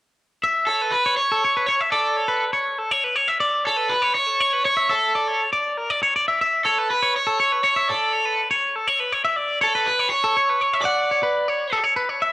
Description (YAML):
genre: rock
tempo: 80 BPM (dotted quarters)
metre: 6/8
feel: straight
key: unclear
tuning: A4 = 440 Hz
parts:
  - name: twangy electric guitar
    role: arpeggios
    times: 0.4-12.3 s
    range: A4 to F#5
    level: -20 LUFS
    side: left 1 dB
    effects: spring reverb
  - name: overdriven semi-hollow guitar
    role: melody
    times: 0.7-11.8 s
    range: A4 to D5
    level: -21 LUFS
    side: right 1 dB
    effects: cassette tape
room: light reverb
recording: home recording on cassette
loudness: -18 LUFS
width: side -17 dB against mid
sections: 0.4-12.3 A section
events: none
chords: 0.4 Aadd9 (rootless); 1.9 D5; 4.9 Aadd11; 6.4 Aadd9 (rootless); 7.9 D5; 10.8 D6